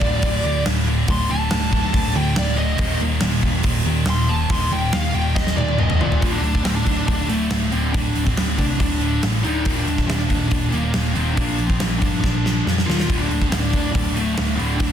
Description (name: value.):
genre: hard rock.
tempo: 140 BPM.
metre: 4/4.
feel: straight.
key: D phrygian.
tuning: A4 = 439 Hz.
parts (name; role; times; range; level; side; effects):
high-gain lead guitar; melody; 0.0-14.9 s; A3 to C6; -25 LUFS; equal; distortion, slapback echo.
overdriven electric guitar; riff; 0.0-14.9 s; D2 to Bb3; -27 LUFS; right 8 dB; none.
scooped high-gain guitar; riff; 0.0-14.9 s; D2 to Bb3; -27 LUFS; equal; distortion.
tight distorted guitar; riff; 0.0-14.9 s; D2 to Bb3; -28 LUFS; left 10 dB; distortion.
hollow-body short-scale picked electric bass; bass; 0.0-14.9 s; D1 to F2; -23 LUFS; equal; none.
gated 80s drum kit; drums; 0.0-14.9 s; hi-hat, kick drum, snare drum, toms; -22 LUFS; equal; soft clipping on snare.
room: light reverb, small room ambience.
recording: dense, heavily limited modern master.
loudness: -17 LUFS.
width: side -9 dB against mid.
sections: 0.0-6.2 A section; 6.2-14.9 B section.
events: lead electric guitar solo 0.0-6.2; drum fill 5.4-6.2, 12.2-13.1.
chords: 0.0 D5; 2.8 Eb5; 6.2 D5; 9.7 Eb5; 11.4 Bb; 13.1 D5.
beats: 0.23 0.66 | 1.09 1.51 1.94 2.37 | 2.80 3.23 3.65 4.08 | 4.51 4.94 5.37 5.79 | 6.22 6.65 7.08 7.51 | 7.94 8.37 8.80 9.23 | 9.66 10.09 10.52 10.95 | 11.38 11.81 12.24 12.66 | 13.09 13.52 13.95 14.38 | 14.80.